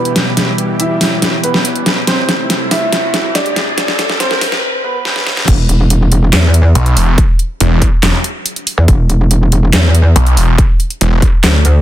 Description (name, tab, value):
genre	heavy wobble dubstep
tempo	141 BPM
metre	4/4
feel	half-time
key	E minor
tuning	A4 = 440 Hz
part	warm grand piano	melody	0.0-5.4 s	B3 to E5	-18 LUFS	right 1 dB	low-pass filter, ping-pong delay
part	supersaw pad	sustained chords	0.0-4.6 s	B2 to G4	-21 LUFS	right 1 dB	sidechain pumping
part	riser	sound effects	1.0-4.6 s	none	-22 LUFS	equal	none
part	dubstep drum kit	drums	0.1-11.7 s	crash cymbal, handclaps, hi-hat, snare drum	-15 LUFS	equal	overdrive
part	metallic wobble bass	bass	5.5-11.8 s	E1 to E2	-9 LUFS	equal	chorus, overdrive
part	electronic kick drum	drums	5.5-11.3 s	none	-11 LUFS	equal	overdrive
part	snarling distorted saw bass	bass	6.8-11.2 s	E1 to B1	-10 LUFS	equal	distortion, overdrive
room	light reverb, digital ambience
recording	dense, heavily limited modern master, high-pass filter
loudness	-10 LUFS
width	side -12 dB against mid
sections	0.0-5.5 A section; 5.5-11.8 B section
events	build-up 0.0-5.5; drum fill 0.0-4.6, 5.1-5.5; filter sweep on grand piano 0.0-5.5; filter sweep 0.0-5.5; riser 1.0-4.6; break 4.6-5.5; drop 5.5-11.8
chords	0.0 Em; 2.1 Am7; 5.5 E5